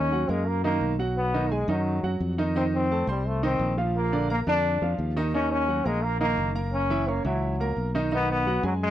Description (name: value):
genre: latin, salsa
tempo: 173 BPM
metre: 4/4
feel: straight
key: Eb minor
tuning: A4 = 440 Hz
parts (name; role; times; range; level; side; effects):
- bright trombone; melody; 0.0-8.9 s; Gb3 to D4; -27 LUFS; left 1 dB; none
- clear baby grand piano; accompaniment; 0.0-8.9 s; D3 to Db6; -28 LUFS; right 2 dB; none
- fingered electric bass; bass; 0.0-8.9 s; Gb1 to Gb2; -28 LUFS; left 1 dB; none
room: little or no reverb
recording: dry, close 1970s-style studio recording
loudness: -23 LUFS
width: side -12 dB against mid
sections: 0.0-8.9 A section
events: none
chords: 0.0 Ebm7; 1.2 B6; 2.6 F7; 3.9 Bb; 5.3 Ebm7; 6.7 Gb7; 8.1 B6